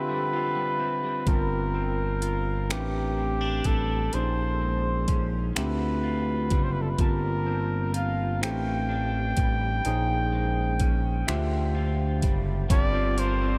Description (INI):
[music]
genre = slow six-eight R&B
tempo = 42 BPM (dotted quarters)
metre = 6/8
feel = straight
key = G dorian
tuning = A4 = 440 Hz
[part]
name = breathy flugelhorn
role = melody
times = 0.0-13.6 s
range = G4 to G5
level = -33 LUFS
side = equal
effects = diffuse ambient delay
[part]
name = electric guitar at the edge of break-up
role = second line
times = 0.0-13.6 s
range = A2 to Bb4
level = -37 LUFS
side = equal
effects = analog chorus
[part]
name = barky tine electric piano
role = accompaniment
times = 0.0-13.6 s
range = Bb3 to A5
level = -35 LUFS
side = equal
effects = lush chorus
[part]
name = warm horn section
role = stabs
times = 0.0-0.8, 12.7-13.6 s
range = D3 to E5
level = -44 LUFS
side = equal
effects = none
[part]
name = smooth gliding synth bass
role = bass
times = 1.3-13.6 s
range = F#1 to D2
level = -30 LUFS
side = equal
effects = none
[part]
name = smooth R&B drum kit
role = drums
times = 1.3-13.4 s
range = finger snaps, hi-hat, kick drum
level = -28 LUFS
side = equal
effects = none
[sound]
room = moderate huge ambient reverb, RT60 4.1 s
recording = dreamy mix soaked in reverb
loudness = -26 LUFS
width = mono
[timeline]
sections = 0.0-1.3 A section; 1.3-12.7 B section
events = break 0.0-1.3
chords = 0.0 Dm11; 1.3 Gm11; 2.7 Am11; 4.1 Bbm11; 5.6 Dm11; 7.0 Gm11; 8.4 Am11; 9.8 Bbm11; 11.3 Dm11; 12.7 Gm11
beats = | 1.27 2.70 | 4.13 5.56 | 6.99 8.41 | 9.84 11.27 | 12.70